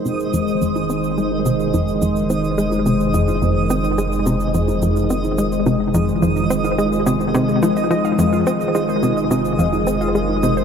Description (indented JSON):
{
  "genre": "ambient, sequencer-driven space music",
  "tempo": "107 BPM",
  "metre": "4/4",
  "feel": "straight",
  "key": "F minor",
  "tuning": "A4 = 440 Hz",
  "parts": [
    { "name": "phased analog pad", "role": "sustained chords", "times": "0.0-10.6 s", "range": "Eb3 to C5", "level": "-19 LUFS", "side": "left 1 dB", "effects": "phaser, chorus" },
    { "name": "round analog bass", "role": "bass", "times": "0.0-10.6 s", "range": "F1", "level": "-28 LUFS", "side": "equal", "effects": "none" },
    { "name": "twinkling granular texture", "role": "texture", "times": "0.0-10.6 s", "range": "Eb5", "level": "-26 LUFS", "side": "right 2 dB", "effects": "built-in reverb" },
    { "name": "warbly dusty pluck", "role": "arpeggios", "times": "0.1-10.6 s", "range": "Eb4 to F5", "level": "-31 LUFS", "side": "right 1 dB", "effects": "none" },
    { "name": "plucky analog bass", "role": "riff", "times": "0.1-10.5 s", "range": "F2 to C4", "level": "-20 LUFS", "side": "equal", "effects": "vintage 12-bit sampler grit, analog delay" },
    { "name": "cabasa and bongos", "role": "percussion", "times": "0.1-10.6 s", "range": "none", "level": "-32 LUFS", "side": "right 4 dB", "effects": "analog delay" }
  ],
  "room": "wet huge ambient reverb, RT60 7.7 s",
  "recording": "in a vast, echoing space",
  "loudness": "-16 LUFS",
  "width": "side -7 dB against mid",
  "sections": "0.0-10.6 A section",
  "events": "filter sweep on analog synth bass 0.0-10.6",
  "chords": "0.0 Fm7"
}